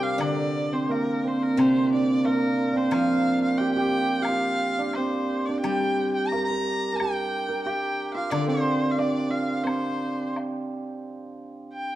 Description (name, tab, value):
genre	chinese traditional, Chinese chamber ensemble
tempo	89 BPM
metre	2/4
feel	rubato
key	C shang mode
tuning	A4 = 440 Hz
part	clear erhu	melody	0.0-12.0 s	Bb4 to Bb5	-29 LUFS	equal	none
part	hammered dulcimer	second line	0.0-12.0 s	Bb3 to Bb4	-24 LUFS	right 2 dB	none
part	steel-string zither	accompaniment	0.0-10.4 s	C3 to G4	-32 LUFS	left 4 dB	none
part	woodblock	percussion	0.2-10.5 s	none	-39 LUFS	left 3 dB	none
room	wet recital hall reverb, RT60 1.8 s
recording	dark, warm production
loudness	-22 LUFS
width	side -14 dB against mid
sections	0.2-11.1 A section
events	none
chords	none